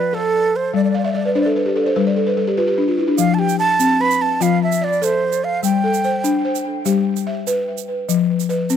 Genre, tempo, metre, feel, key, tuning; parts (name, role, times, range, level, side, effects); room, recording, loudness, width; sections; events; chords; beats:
west african traditional, West African string and xylophone music; 98 BPM (dotted quarters); 12/8; straight; A4 = 441 Hz
breathy mellow silver concert flute; melody; 0.0-6.4 s; A4 to B5; -20 LUFS; right 4 dB; tape echo
balafon; arpeggios; 0.0-8.8 s; F3 to F5; -17 LUFS; left 3 dB; tape echo
tube shaker; percussion; 3.2-8.8 s; -27 LUFS; right 29 dB
light reverb; dry, close 1970s-style studio recording; -16 LUFS; side -8 dB against mid
0.0-8.8 A section
balafon fill 0.9-3.2
0.0 F; 0.7 G; 3.2 F; 5.6 G; 8.1 N.C.
0.13 | 0.74 1.35 1.96 2.57 | 3.19 3.80 4.41 5.02 | 5.63 6.25 6.86 7.47 | 8.09 8.70